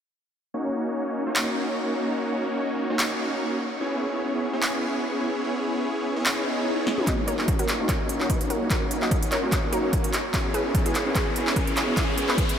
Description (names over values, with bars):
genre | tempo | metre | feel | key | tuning
future bass | 147 BPM | 4/4 | swing 55% on 16ths, half-time | unclear | A4 = 442 Hz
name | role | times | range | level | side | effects
supersaw chords | riff | 0.5-12.6 s | A#3 to C#5 | -26 LUFS | equal | cassette tape, sidechain pumping, low-pass filter, tape echo
big-room dance drum kit | drums | 1.4-12.6 s | finger snaps, handclaps, hi-hat, snare drum, toms | -28 LUFS | equal | overdrive
swell and riser | sound effects | 6.4-12.6 s | none | -35 LUFS | left 1 dB | none
wide unison pluck | melody | 7.1-12.5 s | C#4 to D#5 | -30 LUFS | equal | vintage 12-bit sampler grit, sidechain pumping, tape echo
wide detuned saw bass | bass | 7.1-12.6 s | D#1 to E1 | -38 LUFS | equal | none
electronic kick drum | drums | 7.1-12.5 s | none | -26 LUFS | equal | overdrive
room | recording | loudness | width
wet huge ambient reverb, RT60 8.5 s | dreamy mix soaked in reverb | -23 LUFS | side -8 dB against mid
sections
0.5-7.1 A section; 7.1-12.6 B section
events
filter sweep on supersaw synth 0.5-7.1; swell 6.4-7.1; drum fill 6.9, 7.1-12.6; build-up 7.1-12.6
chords
0.5 D#m7; 3.6 E6; 7.1 D#m7; 10.1 E6